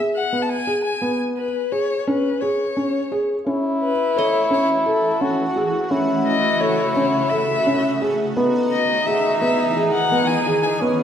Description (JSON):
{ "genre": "contemporary instrumental, chamber music in an uneven meter", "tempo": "171 BPM (eighths)", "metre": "7/8", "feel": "straight", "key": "unclear", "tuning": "A4 = 439 Hz", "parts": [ { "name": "felt-muted upright piano", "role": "arpeggios", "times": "0.0-11.0 s", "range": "B3 to A4", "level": "-21 LUFS", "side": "equal", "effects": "none" }, { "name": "dark violin", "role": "melody", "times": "0.2-10.8 s", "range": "A4 to A5", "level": "-23 LUFS", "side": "left 3 dB", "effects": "none" }, { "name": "French horn with straight mute", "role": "second line", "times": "3.5-11.0 s", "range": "C#4 to F#4", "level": "-22 LUFS", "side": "left 1 dB", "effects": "none" }, { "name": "shimmering ambient pad", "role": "sustained chords", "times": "4.4-11.0 s", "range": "C#3 to B4", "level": "-26 LUFS", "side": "right 3 dB", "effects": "chorus, built-in reverb, phaser" }, { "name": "qanun", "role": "texture", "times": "4.2-5.5 s", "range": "D#5", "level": "-33 LUFS", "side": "right 4 dB", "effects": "none" } ], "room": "moderate concert hall reverb, RT60 2.1 s", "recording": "minimal, uncompressed stereo recording", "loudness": "-17 LUFS", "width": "side -8 dB against mid", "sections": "0.0-11.0 A section", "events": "none", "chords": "0.0 B5; 1.0 C#5; 3.5 F#m7; 5.9 A6; 8.4 Emaj7" }